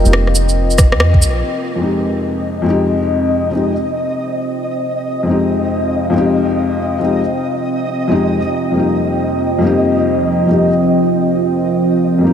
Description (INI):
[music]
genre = future garage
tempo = 138 BPM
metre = 4/4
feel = swing 63% on 16ths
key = F minor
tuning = A4 = 440 Hz
[part]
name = felt-muted upright piano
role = accompaniment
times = 0.0-12.3 s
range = F2 to G4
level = -17 LUFS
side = left 2 dB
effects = sidechain pumping, digital delay
[part]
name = deep dark ambient pad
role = sustained chords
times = 0.0-12.3 s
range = F3 to G5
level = -17 LUFS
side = equal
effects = chorus, built-in reverb, sidechain pumping
[part]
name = soft 808-style bass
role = bass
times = 0.0-1.4 s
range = F1 to F2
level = -14 LUFS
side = equal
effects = sidechain pumping
[part]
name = electronic shaker, rim click and cabasa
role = drums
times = 0.1-1.3 s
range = none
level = -19 LUFS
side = right 1 dB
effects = studio ambience
[part]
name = electronic kick drum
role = drums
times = 0.8-1.2 s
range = none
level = -11 LUFS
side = equal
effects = studio ambience
[part]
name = flickering grainy texture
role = texture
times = 2.4-12.3 s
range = Eb5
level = -23 LUFS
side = right 1 dB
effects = built-in reverb
[sound]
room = moderate huge ambient reverb, RT60 5.0 s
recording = none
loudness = -13 LUFS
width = side -8 dB against mid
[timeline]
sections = 0.0-1.4 A section; 1.4-12.3 B section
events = band accent 1.0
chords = 0.0 Eb; 1.4 Fm7; 8.4 Eb/F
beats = 0.13 0.57 1.00 | 1.44 1.87 2.31 2.74 | 3.18 3.61 4.05 4.48 | 4.92 5.35 5.79 6.22 | 6.66 7.09 7.52 7.96 | 8.39 8.83 9.26 9.70 | 10.13 10.57 11.00 11.44 | 11.87 12.31